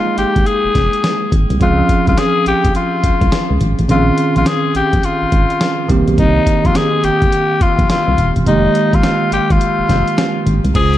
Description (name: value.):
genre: R&B, new jack swing.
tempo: 105 BPM.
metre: 4/4.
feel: swing 64% on 16ths.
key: F minor.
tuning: A4 = 440 Hz.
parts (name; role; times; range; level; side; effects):
raspy tenor saxophone; melody; 0.0-11.0 s; Eb4 to Ab4; -16 LUFS; left 3 dB; digital delay.
bell-like tine electric piano; accompaniment; 0.0-11.0 s; Db3 to C5; -18 LUFS; right 3 dB; none.
solid FM bass; bass; 0.2-11.0 s; Eb1 to Db2; -16 LUFS; equal; none.
dusty soul sampler-style drum kit; drums; 0.2-11.0 s; crash cymbal, hi-hat, kick drum, snare drum; -18 LUFS; equal; none.
room: light reverb, digital ambience.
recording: dark, warm production, lossy compression artefacts.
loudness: -12 LUFS.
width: side -13 dB against mid.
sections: 0.0-10.8 A section.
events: break 9.6-10.8.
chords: 0.0 Fm7 (rootless); 1.6 Dbmaj7; 3.9 Bbm11; 5.9 Cm7; 8.5 Fm11.